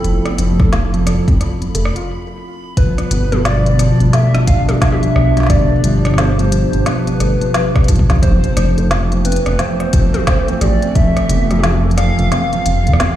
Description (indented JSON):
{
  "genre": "IDM",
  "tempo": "88 BPM",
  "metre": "4/4",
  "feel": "swing 62% on 16ths",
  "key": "unclear",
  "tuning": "A4 = 442 Hz",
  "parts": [
    { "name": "warbly nostalgic lead", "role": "melody", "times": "0.0-13.2 s", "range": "A4 to F5", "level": "-22 LUFS", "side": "equal", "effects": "wide subtle chorus, ping-pong delay" },
    { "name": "warbly tape-like pad", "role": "sustained chords", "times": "0.0-13.2 s", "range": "B2 to A4", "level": "-20 LUFS", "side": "equal", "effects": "chorus, built-in reverb" },
    { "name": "felt-muted upright piano", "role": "arpeggios", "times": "0.0-13.1 s", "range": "F3 to F4", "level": "-21 LUFS", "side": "equal", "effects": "ping-pong delay" },
    { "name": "dark detuned saw bass", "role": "bass", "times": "0.0-13.0 s", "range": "F1 to F2", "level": "-15 LUFS", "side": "equal", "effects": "none" },
    { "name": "organic electronic drum kit", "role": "drums", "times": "0.0-13.2 s", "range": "hi-hat, rim click, snare drum, toms", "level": "-22 LUFS", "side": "left 1 dB", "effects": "none" },
    { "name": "backwards swelling texture", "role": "texture", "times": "0.0-2.1 s", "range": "B5", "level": "-38 LUFS", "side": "left 1 dB", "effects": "built-in reverb" },
    { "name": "electronic kick drum", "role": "drums", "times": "0.6-11.1 s", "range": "none", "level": "-14 LUFS", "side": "equal", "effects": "none" }
  ],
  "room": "digital ambience",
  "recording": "played on a big sound system in a bare room, large studio reverb",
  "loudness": "-12 LUFS",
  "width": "side -12 dB against mid",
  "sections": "0.0-2.8 A section; 2.8-13.2 B section",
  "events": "break 2.1-2.8",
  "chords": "0.0 Fmaj7; 2.8 G7; 8.2 Fmaj7"
}